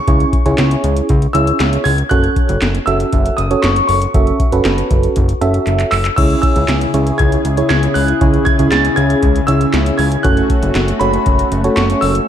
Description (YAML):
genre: synth-pop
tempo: 118 BPM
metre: 4/4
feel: straight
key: unclear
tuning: A4 = 440 Hz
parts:
  - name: warm concert grand piano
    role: melody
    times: 0.0-12.3 s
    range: B5 to A6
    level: -20 LUFS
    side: equal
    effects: wide subtle chorus, ping-pong delay
  - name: FM electric piano with tremolo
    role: accompaniment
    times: 0.1-12.1 s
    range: C#4 to E5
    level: -18 LUFS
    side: right 3 dB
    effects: none
  - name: fat analog bass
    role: bass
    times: 0.1-12.2 s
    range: F#1 to C#2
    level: -16 LUFS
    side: equal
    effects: none
  - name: electro analog drum machine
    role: drums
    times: 0.1-12.3 s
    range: crash cymbal, handclaps, hi-hat, kick drum, snare drum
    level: -17 LUFS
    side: equal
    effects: none
  - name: brassy analog pad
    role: sustained chords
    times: 6.2-12.3 s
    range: C#3 to G#4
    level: -18 LUFS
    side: left 2 dB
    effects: chorus
room: wet lush hall reverb, RT60 1.6 s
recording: dreamy mix soaked in reverb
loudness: -11 LUFS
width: side -10 dB against mid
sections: 0.0-12.3 A section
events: drum fill 5.7-6.2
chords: 0.0 C#m; 2.1 F#m; 6.2 C#m; 10.2 F#m